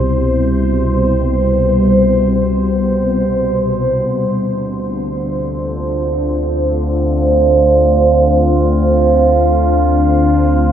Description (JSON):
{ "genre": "ambient", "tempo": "free time", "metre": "none", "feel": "none", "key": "unclear", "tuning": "A4 = 440 Hz", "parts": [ { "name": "evolving wavetable pad", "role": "sustained chords", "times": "0.0-10.7 s", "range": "B2 to C5", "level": "-13 LUFS", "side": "right 1 dB", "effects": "phaser, built-in reverb" }, { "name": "warm sub bass", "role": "bass", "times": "0.0-10.7 s", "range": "C2 to D2", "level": "-18 LUFS", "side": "equal", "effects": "none" } ], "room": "wet huge ambient reverb, RT60 7.9 s", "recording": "dreamy mix soaked in reverb", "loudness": "-12 LUFS", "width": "side -9 dB against mid", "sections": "0.0-10.7 A section", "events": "filter sweep on ambient pad 0.0-10.7", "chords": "0.0 Cmaj7; 4.1 Dm7", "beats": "free time" }